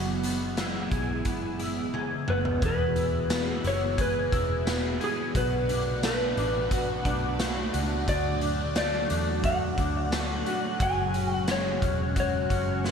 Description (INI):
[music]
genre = dream pop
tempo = 88 BPM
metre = 4/4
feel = straight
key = unclear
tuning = A4 = 440 Hz
[part]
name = electric slide guitar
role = melody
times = 0.0-12.8 s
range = F#4 to G#5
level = -30 LUFS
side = equal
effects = ping-pong delay
[part]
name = phased string machine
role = sustained chords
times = 0.0-12.9 s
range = C#3 to G#4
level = -34 LUFS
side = right 1 dB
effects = ensemble chorus, phaser
[part]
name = electric guitar at the edge of break-up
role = arpeggios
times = 0.0-12.9 s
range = B2 to G#4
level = -31 LUFS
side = left 1 dB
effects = analog chorus, ping-pong delay
[part]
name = vintage muted fingered electric bass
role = bass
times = 0.0-12.9 s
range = E1 to E2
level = -32 LUFS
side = equal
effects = none
[part]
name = raw garage drum kit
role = drums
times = 0.2-12.9 s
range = hi-hat, kick drum, snare drum, tambourine, toms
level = -31 LUFS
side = equal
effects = gated reverb
[sound]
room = moderate plate reverb, RT60 1.6 s, small room ambience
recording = bright 1980s-style digital production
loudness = -25 LUFS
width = side -6 dB against mid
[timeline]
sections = 0.0-2.6 A section; 2.6-12.9 B section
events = drum fill 1.9-2.6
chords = 0.0 Eadd9; 5.3 Bm7; 8.1 D; 10.8 F#sus2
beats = 0.57 1.25 1.94 | 2.62 3.30 3.98 4.66 | 5.35 6.03 6.71 7.39 | 8.07 8.76 9.44 10.12 | 10.80 11.48 12.16 12.85